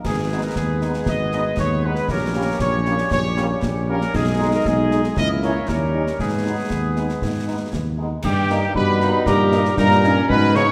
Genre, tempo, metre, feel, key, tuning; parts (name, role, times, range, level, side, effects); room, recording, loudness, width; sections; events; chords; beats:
military-style march for wind band; 117 BPM; 2/4; straight; G# minor; A4 = 440 Hz
warm trombone section; sustained chords; 0.0-10.7 s; G3 to E4; -30 LUFS; equal
dark tuba; bass; 0.0-10.7 s; G#1 to G#2; -24 LUFS; equal
concert snare drum, clash cymbals and concert bass drum; drums; 0.0-10.7 s; -30 LUFS; equal
clear trumpet section; melody; 0.1-10.7 s; G4 to D#5; -27 LUFS; equal
clear woodwind section; second line; 0.1-10.7 s; C#4 to E5; -29 LUFS; equal
clear French horn section; accompaniment; 0.3-10.6 s; G3 to E4; -32 LUFS; equal
mellow euphonium; second line; 8.2-10.7 s; G2 to C#3; -26 LUFS; equal
mellow wooden piccolo; second line; 8.2-10.7 s; G5 to C#6; -25 LUFS; equal
wet scoring stage reverb, RT60 1.6 s; -20 LUFS; mono
0.0-8.2 A section; 8.2-10.7 B section
0.0 G#m; 2.1 Gdim/Bb; 4.1 G#m/B; 5.2 A#dim/C#; 5.7 D#7; 6.2 G#m; 8.2 D#/G
| 0.05 0.56 | 1.07 1.58 | 2.10 2.61 | 3.12 3.63 | 4.14 4.66 | 5.17 5.68 | 6.20 6.71 | 7.22 7.73 | 8.24 8.76 | 9.27 9.78 | 10.29